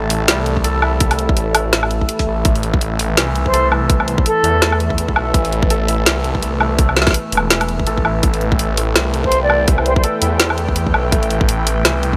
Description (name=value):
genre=half-time drum and bass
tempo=166 BPM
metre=4/4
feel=swing 57% on 16ths, half-time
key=A minor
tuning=A4 = 439 Hz
part: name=dark analog pad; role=sustained chords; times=0.0-12.2 s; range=E3 to A5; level=-27 LUFS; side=equal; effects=chorus, sidechain pumping
part: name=santur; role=arpeggios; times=0.0-12.2 s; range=E3 to A4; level=-26 LUFS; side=equal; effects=digital delay
part: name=phased detuned saw bass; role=bass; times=0.0-12.2 s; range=E1 to E2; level=-22 LUFS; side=equal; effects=phaser
part: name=drum and bass drum kit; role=drums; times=0.1-12.1 s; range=hi-hat, snare drum, woodblock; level=-19 LUFS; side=equal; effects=none
part: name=electronic kick drum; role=drums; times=0.6-12.2 s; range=none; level=-19 LUFS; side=equal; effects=none
part: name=silver concert flute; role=melody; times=3.5-4.8, 9.2-10.0 s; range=A4 to D5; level=-22 LUFS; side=equal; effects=digital delay
room=light reverb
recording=none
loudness=-16 LUFS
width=mono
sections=0.0-12.2 A section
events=none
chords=0.0 A5